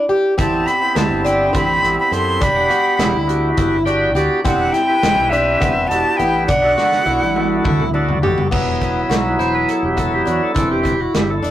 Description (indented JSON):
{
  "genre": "progressive instrumental, band music in an uneven meter",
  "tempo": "207 BPM (eighths)",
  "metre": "7/8",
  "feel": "straight",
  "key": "E minor",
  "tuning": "A4 = 439 Hz",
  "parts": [
    { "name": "fingerpicked plugged-in twelve-string acoustic guitar", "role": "arpeggios", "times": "0.0-11.5 s", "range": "B3 to G4", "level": "-20 LUFS", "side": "left 1 dB", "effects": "none" },
    { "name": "breathy bright jazz flute", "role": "melody", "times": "0.4-7.9 s", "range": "E5 to C6", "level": "-18 LUFS", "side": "equal", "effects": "none" },
    { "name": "warm flugelhorn", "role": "second line", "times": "0.4-7.9 s", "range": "C4 to A4", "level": "-26 LUFS", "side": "right 2 dB", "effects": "none" },
    { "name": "bright tonewheel organ", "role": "accompaniment", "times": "0.4-11.5 s", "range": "E3 to G5", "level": "-20 LUFS", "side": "right 1 dB", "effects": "slow rotary speaker" },
    { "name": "fingered electric bass", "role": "bass", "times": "0.4-11.5 s", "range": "E1 to F#2", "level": "-24 LUFS", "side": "equal", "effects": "none" },
    { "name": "modern studio drum kit", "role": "drums", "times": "0.4-11.5 s", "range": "crash cymbal, hi-hat, kick drum, snare drum, toms", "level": "-22 LUFS", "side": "equal", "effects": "none" }
  ],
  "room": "wet booth ambience, RT60 0.2 s",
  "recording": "rough rehearsal-room recording, warm saturation",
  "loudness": "-14 LUFS",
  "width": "side -12 dB against mid",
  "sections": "0.0-8.5 A section; 8.5-11.5 B section",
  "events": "tonewheel organ fill 3.6-4.5; drum fill 6.8-8.5; tonewheel organ solo 8.5-11.5",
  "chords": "0.4 Am7; 2.4 Em7; 4.5 Cmaj9/E; 6.5 Bm7; 8.5 Esus2; 10.6 Cadd9/E"
}